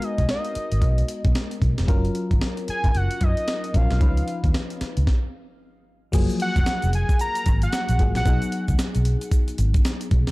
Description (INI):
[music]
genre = R&B, new jack swing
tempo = 113 BPM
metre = 4/4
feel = swing 60% on 16ths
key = unclear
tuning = A4 = 440 Hz
[part]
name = fat analog lead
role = melody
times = 0.0-8.7 s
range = D#5 to A#5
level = -28 LUFS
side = equal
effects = tape echo
[part]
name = FM electric piano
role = accompaniment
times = 0.0-10.3 s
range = E#3 to B4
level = -30 LUFS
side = left 2 dB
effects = chorus
[part]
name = breakbeat sampler-style drum kit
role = drums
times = 0.0-10.3 s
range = crash cymbal, hi-hat, kick drum, snare drum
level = -22 LUFS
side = equal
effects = none
[part]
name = vintage muted fingered electric bass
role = bass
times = 0.2-10.3 s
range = E#1 to F#2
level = -22 LUFS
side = equal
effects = none
[part]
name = egg shaker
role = percussion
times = 6.1-10.3 s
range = none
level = -44 LUFS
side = right 6 dB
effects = none
[sound]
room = little or no reverb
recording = dark, warm production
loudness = -20 LUFS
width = side -21 dB against mid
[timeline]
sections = 0.0-6.1 A section; 6.1-10.3 B section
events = stop 5.1-6.1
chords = 0.0 G#m9; 1.9 F#maj7; 4.0 C#9; 6.1 F#maj9; 8.3 B6